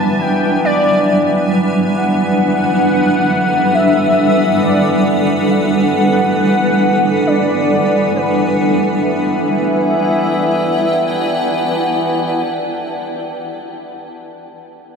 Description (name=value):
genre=ambient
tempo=free time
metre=none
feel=none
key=E minor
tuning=A4 = 441 Hz
part: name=warm velvety synth lead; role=melody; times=0.0-12.4 s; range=B4 to A5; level=-18 LUFS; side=left 1 dB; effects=chorus, ping-pong delay
part: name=granular cloud pad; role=sustained chords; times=0.0-13.1 s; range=F#3 to A5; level=-15 LUFS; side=right 1 dB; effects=built-in reverb
part: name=hand-pumped harmonium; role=drone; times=0.0-12.4 s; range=E3 to B3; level=-22 LUFS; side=equal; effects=none
room=wet cathedral reverb, RT60 5.7 s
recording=in a vast, echoing space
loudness=-12 LUFS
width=side -6 dB against mid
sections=0.0-9.0 A section; 9.0-12.5 B section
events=none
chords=0.0 Em11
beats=free time